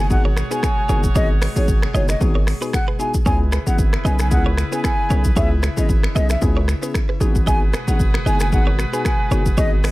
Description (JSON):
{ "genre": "afrobeats", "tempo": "114 BPM", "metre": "4/4", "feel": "swing 55% on 16ths", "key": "G# minor", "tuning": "A4 = 445 Hz", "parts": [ { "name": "breathy mellow concert flute", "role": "melody", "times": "0.0-9.7 s", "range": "C#5 to G#5", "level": "-26 LUFS", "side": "equal", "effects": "none" }, { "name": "clear horn section", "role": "second line", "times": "0.0-9.9 s", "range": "E4 to C#5", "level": "-31 LUFS", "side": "right 2 dB", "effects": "none" }, { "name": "airy breathy pad", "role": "sustained chords", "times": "0.0-9.9 s", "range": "B2 to G#4", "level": "-31 LUFS", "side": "left 2 dB", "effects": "chorus" }, { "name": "hard-hitting 808-style bass", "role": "bass", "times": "0.0-9.9 s", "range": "F#1 to C#2", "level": "-18 LUFS", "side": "equal", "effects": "none" }, { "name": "bell-like tine electric piano", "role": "accompaniment", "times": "0.1-9.7 s", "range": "B3 to G#4", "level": "-27 LUFS", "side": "left 5 dB", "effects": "none" }, { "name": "deep house drum kit", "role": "drums", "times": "0.1-9.9 s", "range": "finger snaps, hi-hat, kick drum, rim click, shaker", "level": "-20 LUFS", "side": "equal", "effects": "none" }, { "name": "direct-recorded clean electric guitar", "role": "riff", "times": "0.3-9.9 s", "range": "D#4 to D#5", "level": "-30 LUFS", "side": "right 4 dB", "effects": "digital delay" } ], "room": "little or no reverb", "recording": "none", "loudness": "-16 LUFS", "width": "side -19 dB against mid", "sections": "0.0-9.9 A section", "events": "none", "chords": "0.0 G#m7; 3.3 C#m7; 7.2 G#m7", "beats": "0.10 0.63 | 1.15 1.68 2.21 2.73 | 3.26 3.79 4.31 4.84 | 5.37 5.89 6.42 6.94 | 7.47 8.00 8.52 9.05 | 9.57" }